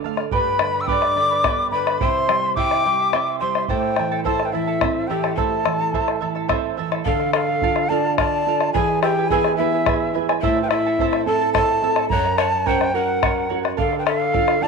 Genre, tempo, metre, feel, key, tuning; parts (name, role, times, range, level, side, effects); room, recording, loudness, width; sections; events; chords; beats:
andean folk, Andean ensemble; 71 BPM (dotted quarters); 6/8; straight; A minor; A4 = 440 Hz
charango; accompaniment; 0.0-14.7 s; E4 to C6; -26 LUFS; right 12 dB
nylon-string guitar; accompaniment; 0.0-14.7 s; F#2 to A#4; -26 LUFS; right 10 dB
bombo; percussion; 0.2-14.6 s; -24 LUFS; left 4 dB
bright large quena; melody; 0.3-14.7 s; E5 to E6; -22 LUFS; equal
breathy large pan pipes; second line; 0.3-14.7 s; E4 to G5; -25 LUFS; left 8 dB
moderate plate reverb, RT60 2.5 s; 1960s-style stereo with parts hard left and right; -17 LUFS; side -4 dB against mid
0.0-7.1 A section; 7.1-14.7 B section
0.3 G; 2.0 C; 3.7 Am; 7.1 Dm; 8.7 E; 10.4 Am; 12.1 F#; 13.8 Dm
| 0.32 1.16 | 2.00 2.84 | 3.69 4.53 | 5.37 6.21 | 7.06 7.90 | 8.74 9.58 | 10.42 11.26 | 12.10 12.95 | 13.79 14.62